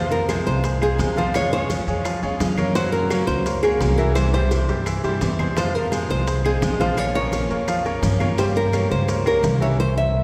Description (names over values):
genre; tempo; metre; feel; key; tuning
latin, Cuban son and guajira; 171 BPM; 4/4; straight; F harmonic minor; A4 = 440 Hz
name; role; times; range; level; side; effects
nylon-string guitar; melody; 0.0-10.2 s; Ab4 to E5; -26 LUFS; equal; none
picked steel-string acoustic guitar; accompaniment; 0.0-9.8 s; C3 to G4; -30 LUFS; equal; none
bright baby grand piano; arpeggios; 0.0-9.8 s; E3 to G5; -29 LUFS; equal; none
upright bass; bass; 0.0-10.2 s; Bb1 to G2; -26 LUFS; equal; none
congas; percussion; 0.1-9.6 s; none; -32 LUFS; equal; none
maracas; percussion; 0.1-9.8 s; none; -41 LUFS; equal; none
bongos; percussion; 0.3-9.6 s; none; -35 LUFS; equal; none
claves; percussion; 0.3-9.4 s; none; -40 LUFS; equal; none
room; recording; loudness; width
wet church reverb, RT60 3.5 s; recorded in a church or concert hall; -21 LUFS; mono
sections
0.0-10.2 A section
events
none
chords
0.0 Fm; 1.3 Db/F; 2.8 Gb; 4.2 C; 5.6 Fm; 7.0 Bbm; 8.4 Gdim